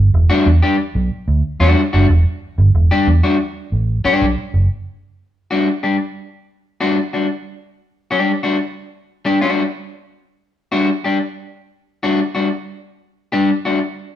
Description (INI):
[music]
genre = funk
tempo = 92 BPM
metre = 4/4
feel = straight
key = unclear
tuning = A4 = 440 Hz
[part]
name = vintage muted fingered electric bass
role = bass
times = 0.0-4.7 s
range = E1 to E2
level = -13 LUFS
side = right 1 dB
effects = none
[part]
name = electric guitar at the edge of break-up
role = accompaniment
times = 0.3-13.8 s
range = G3 to G4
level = -16 LUFS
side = left 2 dB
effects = none
[sound]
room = wet stone room reverb, RT60 1.1 s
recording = band playing live in one room, tape saturation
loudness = -14 LUFS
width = side -12 dB against mid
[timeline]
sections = 0.0-4.7 A section; 4.7-14.2 B section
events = none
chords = 0.0 Em9; 4.7 G5